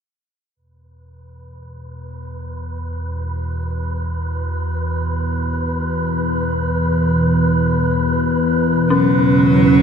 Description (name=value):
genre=dark ambient drone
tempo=free time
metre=none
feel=none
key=unclear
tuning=A4 = 440 Hz
part: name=analog drone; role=drone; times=1.5-9.8 s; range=E2 to B2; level=-18 LUFS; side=left 1 dB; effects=chorus
part: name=wind-like tuned noise texture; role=texture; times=2.0-9.8 s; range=B4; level=-24 LUFS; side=right 1 dB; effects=built-in reverb, shimmer reverb
part: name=clear cello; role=melody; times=8.9-9.8 s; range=F#3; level=-18 LUFS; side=left 2 dB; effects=none
part: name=dark analog pad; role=sustained chords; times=9.3-9.8 s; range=C#4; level=-16 LUFS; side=right 4 dB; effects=chorus
part: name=dark detuned synth bell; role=arpeggios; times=8.9-9.8 s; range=C#4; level=-18 LUFS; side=left 3 dB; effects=chorus, tremolo
room=wet cathedral reverb, RT60 6.5 s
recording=in a vast, echoing space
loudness=-16 LUFS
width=side -7 dB against mid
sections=0.6-9.8 A section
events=fade-in on synth drone 0.6-9.8; fade-in on synth texture 0.6-9.8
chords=0.6 E5; 8.9 C#m